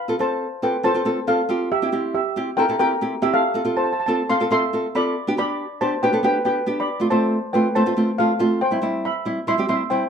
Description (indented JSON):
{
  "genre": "calypso",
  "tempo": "139 BPM",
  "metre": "4/4",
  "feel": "straight",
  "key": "C major",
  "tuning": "A4 = 441 Hz",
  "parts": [
    { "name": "steel pan", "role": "melody", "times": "0.0-10.1 s", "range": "G4 to C6", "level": "-21 LUFS", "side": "equal", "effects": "none" },
    { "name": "nylon-string guitar", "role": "accompaniment", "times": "0.1-10.0 s", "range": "G3 to A4", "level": "-22 LUFS", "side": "right 1 dB", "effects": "none" }
  ],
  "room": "wet small room reverb, RT60 0.6 s",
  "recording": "minimal, uncompressed stereo recording",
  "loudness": "-18 LUFS",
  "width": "side -7 dB against mid",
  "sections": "0.0-10.1 A section",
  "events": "none",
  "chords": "0.0 F; 1.7 C7; 3.4 F; 5.2 G; 6.9 F; 8.6 C"
}